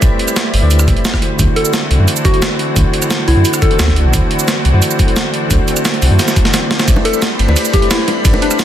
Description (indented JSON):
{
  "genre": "liquid drum and bass",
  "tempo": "175 BPM",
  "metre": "4/4",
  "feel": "straight",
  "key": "unclear",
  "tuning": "A4 = 444 Hz",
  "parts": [
    { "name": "bell-like tine electric piano", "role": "accompaniment", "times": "0.0-8.6 s", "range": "D3 to D5", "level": "-19 LUFS", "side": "equal", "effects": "tape echo" },
    { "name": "lush unison pad", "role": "sustained chords", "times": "0.0-8.6 s", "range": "E3 to B5", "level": "-21 LUFS", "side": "left 2 dB", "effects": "chorus, sidechain pumping" },
    { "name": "sub bass with octave", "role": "bass", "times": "0.0-8.3 s", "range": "G1 to F#2", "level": "-12 LUFS", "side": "equal", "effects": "none" },
    { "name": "breakbeat sampler-style drum kit", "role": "drums", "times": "0.0-8.6 s", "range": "hi-hat, ride cymbal, rim click, shaker, snare drum", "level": "-17 LUFS", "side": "right 2 dB", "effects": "small room reverb" },
    { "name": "electronic kick drum", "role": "drums", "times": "0.0-8.3 s", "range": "none", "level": "-14 LUFS", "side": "equal", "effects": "small room reverb" },
    { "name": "soft struck synth lead", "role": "melody", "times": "1.6-4.0, 7.0-8.6 s", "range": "D4 to A4", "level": "-18 LUFS", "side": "left 2 dB", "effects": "chorus, vintage 12-bit sampler grit, digital delay" },
    { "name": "bongos", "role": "percussion", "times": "7.0-8.6 s", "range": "none", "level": "-24 LUFS", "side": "equal", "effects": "none" }
  ],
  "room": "light reverb",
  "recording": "dense, heavily limited modern master",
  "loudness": "-10 LUFS",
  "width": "side -11 dB against mid",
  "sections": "0.0-8.6 A section",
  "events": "drum fill 6.2-6.9; break 6.5-6.9",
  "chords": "0.0 Am11; 1.2 D9; 6.9 Am11",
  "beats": "| 0.02 0.36 0.71 1.05 | 1.39 1.74 2.08 2.42 | 2.76 3.11 3.45 3.79 | 4.13 4.48 4.82 5.16 | 5.51 5.85 6.19 6.54 | 6.88 7.22 7.56 7.91 | 8.25 8.59"
}